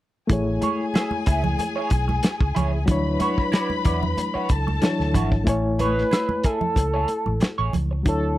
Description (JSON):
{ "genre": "lush 1970s-style soul", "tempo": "93 BPM", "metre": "4/4", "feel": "swing 54% on 16ths", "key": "A major", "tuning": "A4 = 442 Hz", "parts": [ { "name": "warm studio string section", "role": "second line", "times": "0.3-5.4 s", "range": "G#4 to B5", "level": "-28 LUFS", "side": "left 3 dB", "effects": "none" }, { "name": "reed electric piano", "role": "accompaniment", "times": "0.3-8.4 s", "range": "E3 to G#5", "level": "-27 LUFS", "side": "left 2 dB", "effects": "fast tremolo" }, { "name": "vintage muted fingered electric bass", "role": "bass", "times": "0.3-8.4 s", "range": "G#1 to E2", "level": "-24 LUFS", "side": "equal", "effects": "none" }, { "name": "warm soul drum kit", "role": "drums", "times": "0.3-8.2 s", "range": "hi-hat, kick drum, snare drum", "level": "-21 LUFS", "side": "equal", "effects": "none" }, { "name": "congas", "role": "percussion", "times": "0.3-8.2 s", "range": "none", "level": "-30 LUFS", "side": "right 3 dB", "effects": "none" }, { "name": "electric guitar at the edge of break-up", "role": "riff", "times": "0.6-8.0 s", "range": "E4 to E5", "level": "-29 LUFS", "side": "right 5 dB", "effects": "wah, analog chorus" }, { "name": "expressive synth lead", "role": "melody", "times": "5.8-8.4 s", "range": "A4 to B4", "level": "-25 LUFS", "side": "right 1 dB", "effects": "chorus" } ], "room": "small room ambience", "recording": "dry, close 1970s-style studio recording", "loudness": "-20 LUFS", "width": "side -15 dB against mid", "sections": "0.3-5.5 A section; 5.5-8.4 B section", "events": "none", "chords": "0.3 Amaj7; 2.9 Dmaj9; 5.5 Amaj7" }